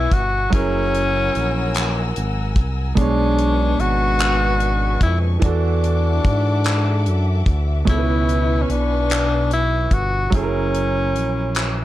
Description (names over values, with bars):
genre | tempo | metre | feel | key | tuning
slow six-eight R&B | 49 BPM (dotted quarters) | 6/8 | straight | B dorian | A4 = 439 Hz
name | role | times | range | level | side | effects
breathy tenor saxophone | melody | 0.0-11.8 s | C#4 to F#4 | -22 LUFS | left 2 dB | slapback echo
clear baby grand piano | accompaniment | 0.0-11.8 s | B2 to C#5 | -25 LUFS | right 5 dB | none
rich studio string section | sustained chords | 0.0-10.3 s | D4 to E6 | -31 LUFS | left 3 dB | none
smooth gliding synth bass | bass | 0.0-11.8 s | F#1 to G#2 | -20 LUFS | equal | none
damped 70s drum kit | drums | 0.1-11.7 s | handclaps, hi-hat, kick drum | -20 LUFS | equal | none
room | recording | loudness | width
light reverb | dark, warm production | -16 LUFS | side -14 dB against mid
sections
0.0-11.8 A section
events
grand piano fill 11.5-11.8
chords
0.0 C#m7; 0.5 F#9; 3.0 Bm69; 5.4 E9sus4; 7.9 C#m7; 10.3 F#9